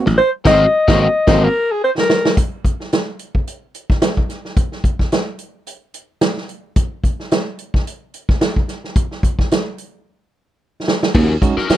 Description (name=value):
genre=funk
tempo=109 BPM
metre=4/4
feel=swing 56% on 16ths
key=unclear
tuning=A4 = 440 Hz
part: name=overdriven tine electric piano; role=stabs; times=0.0-1.5, 11.2-11.6 s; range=Eb3 to Gb4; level=-21 LUFS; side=right 5 dB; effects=none
part: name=crunchy overdriven guitar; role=accompaniment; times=0.1-1.5, 11.1-11.8 s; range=C4 to Bb4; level=-21 LUFS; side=left 6 dB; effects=wah
part: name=mellow electric guitar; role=riff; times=0.1, 11.2-11.6 s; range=Gb3 to Bb3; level=-20 LUFS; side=right 4 dB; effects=none
part: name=glassy slap bass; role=bass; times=0.1-1.5, 11.2-11.7 s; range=Ab1 to Eb2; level=-17 LUFS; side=equal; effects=none
part: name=swinging big-band drum kit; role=drums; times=0.1-11.8 s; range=crash cymbal, hi-hat, kick drum, snare drum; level=-16 LUFS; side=equal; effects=none
part: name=breathy alto saxophone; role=melody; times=0.2-2.4 s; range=Ab4 to Eb5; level=-14 LUFS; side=left 2 dB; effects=none
part: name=warm horn section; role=second line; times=0.5-1.4 s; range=Gb3 to C5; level=-23 LUFS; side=left 2 dB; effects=none
room=little or no reverb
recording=none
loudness=-15 LUFS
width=side -13 dB against mid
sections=0.0-2.4 A section; 2.4-11.2 B section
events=alto saxophone solo 0.0-2.4; band accent 0.2-2.4; drum fill 1.8-2.4, 10.1-11.2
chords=0.0 Ab9; 2.4 N.C.; 11.2 Ebm7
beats=| 0.18 0.73 1.27 1.82 | 2.37 2.92 3.47 4.02 | 4.57 5.12 5.67 6.22 | 6.77 7.32 7.86 8.41 | 8.96 9.51 10.06 10.60 | 11.15 11.70